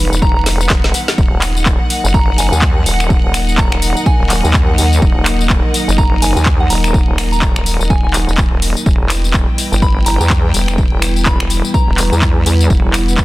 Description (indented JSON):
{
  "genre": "bass house",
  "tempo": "125 BPM",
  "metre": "4/4",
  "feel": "swing 59% on 16ths",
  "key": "Eb phrygian",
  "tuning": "A4 = 440 Hz",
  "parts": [
    { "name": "dark analog pad", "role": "sustained chords", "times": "0.0-13.2 s", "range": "Gb3 to B4", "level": "-22 LUFS", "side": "equal", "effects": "chorus, sidechain pumping" },
    { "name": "vowel-sweep wobble bass", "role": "bass", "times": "0.0-13.2 s", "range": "Eb1 to E2", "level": "-15 LUFS", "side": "equal", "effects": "chorus, tube saturation, sidechain pumping" },
    { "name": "warm studio string section", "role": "texture", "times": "0.0-13.2 s", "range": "E3 to G5", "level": "-23 LUFS", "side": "equal", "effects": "sidechain pumping" },
    { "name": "garage drum kit", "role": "drums", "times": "0.1-13.2 s", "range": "finger snaps, handclaps, hi-hat, snare drum, tambourine", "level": "-18 LUFS", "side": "left 1 dB", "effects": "soft clipping on snare" },
    { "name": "soft synth bell", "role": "melody", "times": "0.2-12.1 s", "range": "Gb5 to B5", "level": "-23 LUFS", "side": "right 1 dB", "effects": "chorus, dub echo" },
    { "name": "electronic kick drum", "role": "drums", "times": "0.2-13.2 s", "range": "none", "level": "-14 LUFS", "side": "equal", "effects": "none" }
  ],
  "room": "digital ambience",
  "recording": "dense, heavily limited modern master",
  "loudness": "-11 LUFS",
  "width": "side -18 dB against mid",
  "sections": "0.0-13.2 A section",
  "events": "drum fill 0.5-1.2",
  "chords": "0.0 Em; 1.2 Ebm; 8.9 Em"
}